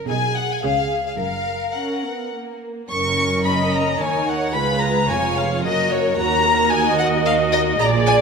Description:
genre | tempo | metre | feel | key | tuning
quick classical-period movement for string orchestra | 110 BPM | 3/4 | rubato | F# major | A4 = 440 Hz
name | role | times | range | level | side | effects
warm chamber violin section | second line | 0.0-8.2 s | C#4 to D5 | -25 LUFS | right 1 dB | none
warm chamber violin section | melody | 0.1-8.2 s | C#5 to C#6 | -20 LUFS | left 4 dB | none
warm chamber viola section | accompaniment | 0.1-8.2 s | A#3 to D#5 | -24 LUFS | right 1 dB | none
dark chamber cello section | bass | 0.1-8.2 s | C#2 to C#3 | -26 LUFS | right 5 dB | none
warm studio double bass section | bass | 0.1-8.2 s | E#1 to D#2 | -27 LUFS | right 6 dB | none
room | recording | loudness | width
wet concert hall reverb, RT60 1.7 s | none | -17 LUFS | side -5 dB against mid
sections
0.0-2.9 A section; 2.9-8.2 B section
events
none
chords
0.1 G#m/B; 0.6 C#; 1.2 F#; 4.6 C#7; 5.6 F#; 6.2 D#m

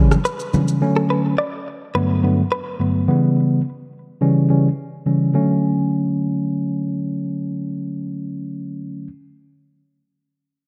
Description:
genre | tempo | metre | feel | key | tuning
afrobeats | 106 BPM | 4/4 | straight | unclear | A4 = 441 Hz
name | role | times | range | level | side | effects
mellow tine electric piano | accompaniment | 0.0-9.1 s | G2 to C#4 | -20 LUFS | equal | none
downlifter | sound effects | 0.4-0.8 s | none | barely audible | none | none
electronic rim click and shaker | drums | 0.1-0.8 s | none | -20 LUFS | equal | none
congas | percussion | 0.1-0.7 s | none | -26 LUFS | equal | none
direct-recorded clean electric guitar | riff | 0.3-2.7 s | A4 to D5 | -27 LUFS | equal | tape echo
room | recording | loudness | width
light reverb | dark, warm production | -20 LUFS | mono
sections
0.0-5.3 A section; 5.3-7.6 B section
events
none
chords
0.0 C#dim; 0.8 Bm7 (rootless); 1.9 Gmaj7; 3.1 C#m7b5; 4.2 C#dim; 5.3 Dmaj7

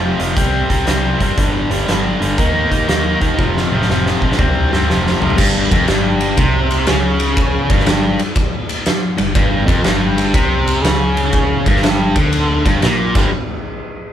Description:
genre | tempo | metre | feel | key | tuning
blues rock power trio and southern rock | 121 BPM | 4/4 | swing 66% on 8ths | G minor | A4 = 441 Hz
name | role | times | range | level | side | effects
overdriven electric guitar | riff | 0.0-13.3 s | F2 to Eb4 | -16 LUFS | equal | none
vintage muted fingered electric bass | bass | 0.0-13.3 s | F1 to G2 | -21 LUFS | equal | none
oversized low-tuned drum kit | drums | 0.2-13.2 s | crash cymbal, hi-hat, kick drum, ride cymbal, snare drum, toms | -16 LUFS | equal | none
room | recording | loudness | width
light reverb | band playing live in one room | -13 LUFS | side -10 dB against mid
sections
0.0-5.4 A section; 5.4-13.3 B section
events
drum fill 3.4-5.4, 13.1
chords
0.4 C5; 1.4 G5; 2.4 Eb5; 3.4 F5; 4.4 C5; 4.9 F5; 5.4 G5; 13.3 N.C.

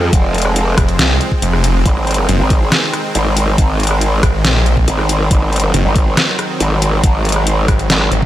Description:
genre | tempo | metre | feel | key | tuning
heavy wobble dubstep | 139 BPM | 4/4 | half-time | unclear | A4 = 440 Hz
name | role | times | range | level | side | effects
supersaw pad | sustained chords | 0.0-8.3 s | Eb3 to C4 | -20 LUFS | right 1 dB | sidechain pumping
growl bass | bass | 0.0-8.1 s | F1 to F2 | -15 LUFS | equal | chorus, overdrive
dubstep drum kit | drums | 0.1-8.2 s | hi-hat, rim click, snare drum | -17 LUFS | left 1 dB | none
electronic kick drum | drums | 0.1-8.3 s | none | -14 LUFS | equal | overdrive
snarling distorted saw bass | bass | 0.8-8.3 s | F1 to C2 | -14 LUFS | equal | overdrive
room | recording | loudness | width
little or no reverb | none | -11 LUFS | side -13 dB against mid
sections
0.0-8.3 A section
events
none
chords
0.0 Fm; 1.9 Ab

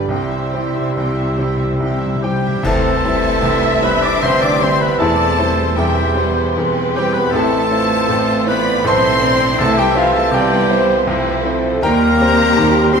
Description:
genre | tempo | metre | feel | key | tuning
classical, romantic movement for piano and orchestra | 68-83 BPM | 3/4 | rubato | C major | A4 = 440 Hz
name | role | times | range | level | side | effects
clear baby grand piano | melody | 0.0-13.0 s | E1 to D6 | -18 LUFS | left 1 dB | none
rich studio violin section | melody | 0.0-13.0 s | E5 to D6 | -24 LUFS | left 3 dB | none
small flute group | second line | 0.0-13.0 s | C6 | -25 LUFS | left 2 dB | none
warm clarinet | second line | 0.0-13.0 s | F4 to D5 | -24 LUFS | left 2 dB | none
warm studio violin section | second line | 0.0-13.0 s | A3 to B4 | -25 LUFS | left 5 dB | none
mellow bassoon | accompaniment | 0.0-13.0 s | E3 to G3 | -24 LUFS | right 5 dB | none
warm studio viola section | accompaniment | 0.0-13.0 s | C4 to E5 | -24 LUFS | right 1 dB | none
mellow French horn section | sustained chords | 0.0-13.0 s | B3 to G4 | -26 LUFS | left 1 dB | none
rich studio cello section | bass | 0.0-13.0 s | C3 to D4 | -22 LUFS | right 1 dB | none
rich studio double bass section | bass | 0.0-13.0 s | A1 to E2 | -25 LUFS | right 3 dB | none
warm oboe | second line | 0.1-13.0 s | F4 to E5 | -24 LUFS | right 2 dB | none
timpani | percussion | 0.1-2.6 s | C3 | -25 LUFS | left 2 dB | none
clash cymbals and concert bass drum | percussion | 2.7-4.2 s | none | -27 LUFS | equal | none
room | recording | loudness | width
moderate scoring stage reverb, RT60 1.7 s | minimal, uncompressed stereo recording | -13 LUFS | side -6 dB against mid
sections
0.0-2.7 A section; 2.7-13.0 A section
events
timpani fill 0.1-2.7; band accent 2.7-3.5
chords
0.1 C; 5.0 C/E; 7.3 Am; 9.6 Am/C; 11.8 Cm/Eb

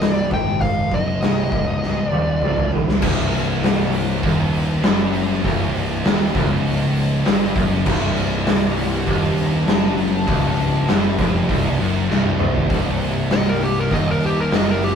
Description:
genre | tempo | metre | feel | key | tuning
stoner and doom metal | 99 BPM | 4/4 | straight | C minor | A4 = 440 Hz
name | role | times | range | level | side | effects
fuzz lead guitar | melody | 0.0-2.7, 13.3-15.0 s | G4 to G5 | -23 LUFS | left 1 dB | distortion
overtone-sweeping drone | sustained chords | 0.0-3.0, 8.7-15.0 s | C3 to G4 | -32 LUFS | left 2 dB | chorus, built-in reverb
thick fuzz guitar | riff | 0.0-15.0 s | C2 to Ab2 | -26 LUFS | left 4 dB | distortion
thick fuzz guitar | riff | 0.0-15.0 s | C2 to Ab2 | -27 LUFS | right 4 dB | none
fuzz picked electric bass | bass | 0.0-15.0 s | C1 to Ab1 | -24 LUFS | equal | overdrive
oversized low-tuned drum kit | drums | 0.0-15.0 s | crash cymbal, hi-hat, kick drum, snare drum, toms | -20 LUFS | equal | none
heavy high-gain guitar | riff | 3.0-15.0 s | C2 to G2 | -25 LUFS | equal | distortion
room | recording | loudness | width
little or no reverb | rough rehearsal-room recording | -16 LUFS | side -7 dB against mid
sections
0.0-3.0 A section; 3.0-12.7 B section; 12.7-15.0 C section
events
drum fill 1.8-3.0, 12.1-12.7; lead electric guitar solo 12.7-15.0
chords
0.0 Cm

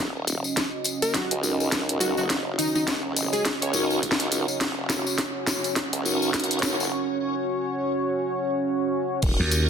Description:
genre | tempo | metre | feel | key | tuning
glitch hop | 104 BPM | 4/4 | swing 59% on 16ths | Eb minor pentatonic | A4 = 439 Hz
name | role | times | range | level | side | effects
dark analog pad | sustained chords | 0.0-9.7 s | Db4 to Eb5 | -28 LUFS | right 1 dB | chorus, sidechain pumping
formant-sweep wobble bass | bass | 0.0-9.4 s | Eb1 to Eb2 | -31 LUFS | equal | chorus, high-pass filter
drum and bass drum kit | drums | 0.3-9.7 s | crash cymbal, hi-hat, snare drum | -27 LUFS | equal | overdrive
tambourine | percussion | 0.3-9.7 s | none | -31 LUFS | left 4 dB | none
electronic kick drum | drums | 0.6-9.4 s | none | -30 LUFS | equal | overdrive, high-pass filter on kick, high-pass filter on room
plucky unison lead | melody | 1.0-4.0 s | Eb4 to Db5 | -28 LUFS | equal | digital delay
tonewheel organ | stabs | 1.4-9.7 s | Db4 to Bb4 | -29 LUFS | equal | chorus vibrato, slow rotary speaker, sidechain pumping, low-pass filter, digital delay
slap bass | bass | 9.4-9.7 s | Eb2 | -21 LUFS | equal | none
room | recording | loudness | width
moderate digital room reverb, RT60 1.3 s | dense, heavily limited modern master | -23 LUFS | side -7 dB against mid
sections
0.0-9.2 A section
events
build-up 0.0-9.2; drum fill 0.0-6.9; filter sweep on tonewheel organ 0.0-9.2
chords
0.0 Ebm7

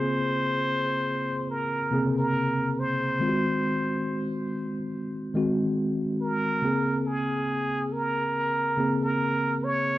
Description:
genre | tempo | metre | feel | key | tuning
hip hop | 70 BPM | 4/4 | swing 58% on 16ths | Bb minor | A4 = 441 Hz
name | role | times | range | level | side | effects
trumpet with plunger mute | melody | 0.0-10.0 s | Ab4 to Db5 | -28 LUFS | equal | none
mellow tine electric piano | accompaniment | 0.0-10.0 s | C3 to Ab4 | -26 LUFS | equal | medium stereo tremolo, cassette tape
room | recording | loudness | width
wet studio ambience, RT60 0.5 s | cassette tape | -24 LUFS | side -16 dB against mid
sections
0.0-10.0 A section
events
none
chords
0.0 Bbm9; 3.2 Ab7; 6.6 Bbm9

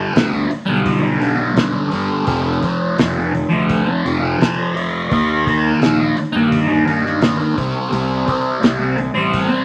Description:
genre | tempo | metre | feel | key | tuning
psychedelic rock | 85 BPM | 4/4 | straight | unclear | A4 = 436 Hz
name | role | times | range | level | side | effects
fuzz guitar | riff | 0.0-9.6 s | F2 to Eb4 | -19 LUFS | equal | distortion, phaser
fuzz fingered electric bass | bass | 0.0-9.5 s | F1 to G2 | -24 LUFS | equal | overdrive
cloth-damped thuddy drum kit | drums | 0.2-9.5 s | hi-hat, kick drum, snare drum | -20 LUFS | equal | none
room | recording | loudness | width
moderate studio reverb, RT60 0.9 s | vinyl crackle | -17 LUFS | mono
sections
0.0-9.6 A section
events
none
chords
0.0 G; 2.3 F5; 5.1 Eb; 7.6 C5

